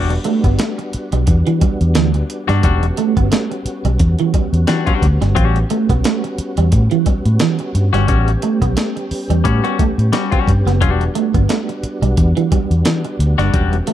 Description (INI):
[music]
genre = funk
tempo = 88 BPM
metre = 4/4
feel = swing 56% on 16ths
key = E dorian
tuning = A4 = 440 Hz
[part]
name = semi-hollow electric guitar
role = accompaniment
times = 0.0-13.8 s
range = G3 to F#4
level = -20 LUFS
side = left 9 dB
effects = none
[part]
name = tonewheel organ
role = sustained chords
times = 0.0-13.9 s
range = G3 to G4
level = -25 LUFS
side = equal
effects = chorus vibrato, slow rotary speaker
[part]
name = vintage muted fingered electric bass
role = bass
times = 0.0-13.8 s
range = E1 to A2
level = -15 LUFS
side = equal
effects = none
[part]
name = clean electric guitar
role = riff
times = 0.1-13.9 s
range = E3 to B3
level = -19 LUFS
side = right 5 dB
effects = ensemble chorus
[part]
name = breakbeat sampler-style drum kit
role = drums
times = 0.1-13.9 s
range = hi-hat, kick drum, snare drum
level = -18 LUFS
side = equal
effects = none
[sound]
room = little or no reverb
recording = dark, warm production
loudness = -13 LUFS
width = side -11 dB against mid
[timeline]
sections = 0.0-13.9 A section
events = none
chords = 0.0 Em9; 5.4 A13; 10.8 Em9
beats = 0.59 1.27 1.95 | 2.64 3.32 4.00 4.68 | 5.36 6.04 6.73 7.41 | 8.09 8.77 9.45 10.13 | 10.81 11.50 12.18 12.86 | 13.54